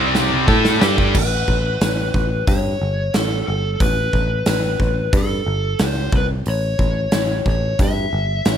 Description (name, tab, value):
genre	hard rock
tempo	90 BPM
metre	4/4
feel	straight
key	unclear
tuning	A4 = 439 Hz
part	high-gain distorted guitar	riff	0.0-1.1 s	C3 to A4	-21 LUFS	right 2 dB	distortion
part	overdriven semi-hollow guitar	riff	0.0-1.1 s	C3 to A4	-21 LUFS	right 16 dB	none
part	scooped high-gain guitar	riff	0.0-1.1 s	C3 to A4	-20 LUFS	left 11 dB	distortion
part	picked electric bass	bass	0.0-8.6 s	G1 to A2	-21 LUFS	equal	none
part	big rock drum kit	drums	0.1-8.6 s	crash cymbal, hi-hat, kick drum, snare drum	-20 LUFS	equal	none
part	lead guitar through a small cranked amp	melody	0.8-8.6 s	A4 to E5	-23 LUFS	left 1 dB	overdrive
room	little or no reverb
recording	none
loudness	-16 LUFS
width	side -9 dB against mid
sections	0.0-1.1 A section; 1.1-8.6 B section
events	drum fill 0.0-1.1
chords	0.5 A5; 1.1 N.C.; 6.5 A